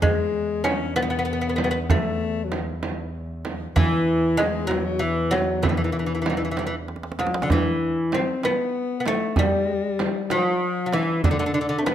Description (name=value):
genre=Persian modal ensemble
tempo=64 BPM (dotted quarters)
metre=6/8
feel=straight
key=E dastgah mahur, E dastgah shur from 7.5 s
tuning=A4 = 440 Hz
part: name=lute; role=melody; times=0.0-11.9 s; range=D3 to C#4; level=-24 LUFS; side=equal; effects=none
part: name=clear alto saxophone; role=second line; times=0.0-11.9 s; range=D3 to C#4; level=-28 LUFS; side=left 7 dB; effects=none
part: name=muted double bass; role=drone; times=0.0-7.6 s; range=E2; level=-31 LUFS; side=right 1 dB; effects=none
part: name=frame drum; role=percussion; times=0.0-11.9 s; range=none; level=-28 LUFS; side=right 3 dB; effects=none
part: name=tombak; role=percussion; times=0.0-11.9 s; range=none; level=-25 LUFS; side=right 2 dB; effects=none
room=light reverb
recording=close, detailed microphones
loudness=-21 LUFS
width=side -10 dB against mid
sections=0.0-7.5 A section; 7.5-11.9 B section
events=drum fill 6.9-7.5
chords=none